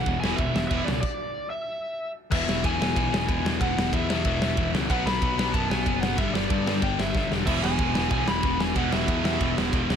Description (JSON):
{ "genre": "punk rock", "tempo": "186 BPM", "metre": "4/4", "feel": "straight", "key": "unclear", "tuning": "A4 = 440 Hz", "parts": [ { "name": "lead guitar through a small cranked amp", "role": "melody", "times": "0.0-9.5 s", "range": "D5 to B5", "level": "-30 LUFS", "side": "equal", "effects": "overdrive" }, { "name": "distorted electric guitar", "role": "riff", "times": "0.0-1.0, 7.5-10.0 s", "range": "E2 to E3", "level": "-31 LUFS", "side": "right 14 dB", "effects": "distortion" }, { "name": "distorted electric guitar", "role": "riff", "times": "0.0-10.0 s", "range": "E2 to B3", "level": "-30 LUFS", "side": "right 2 dB", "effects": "distortion" }, { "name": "sludgy distorted guitar", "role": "riff", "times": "0.0-10.0 s", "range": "E2 to B3", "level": "-30 LUFS", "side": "left 10 dB", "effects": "overdrive" }, { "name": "growling picked electric bass", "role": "bass", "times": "0.1-10.0 s", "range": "E1 to G2", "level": "-30 LUFS", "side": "right 1 dB", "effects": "overdrive" }, { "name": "big rock drum kit", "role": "drums", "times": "0.1-10.0 s", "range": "crash cymbal, kick drum, ride cymbal, snare drum", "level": "-27 LUFS", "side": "equal", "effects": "none" } ], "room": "light reverb", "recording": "none", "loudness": "-22 LUFS", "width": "side -8 dB against mid", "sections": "0.0-2.3 A section; 2.3-10.0 B section", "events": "stop 1.0-2.3; drum fill 7.1-7.5", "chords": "0.0 E5; 1.0 N.C.; 2.3 E; 4.9 B5; 6.2 G5; 7.5 E", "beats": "0.07 0.39 0.71 | 1.03 1.36 1.68 2.00 | 2.32 2.65 2.97 3.29 | 3.61 3.93 4.25 4.58 | 4.90 5.22 5.54 5.86 | 6.18 6.51 6.83 7.15 | 7.47 7.79 8.11 8.44 | 8.76 9.08 9.40 9.72" }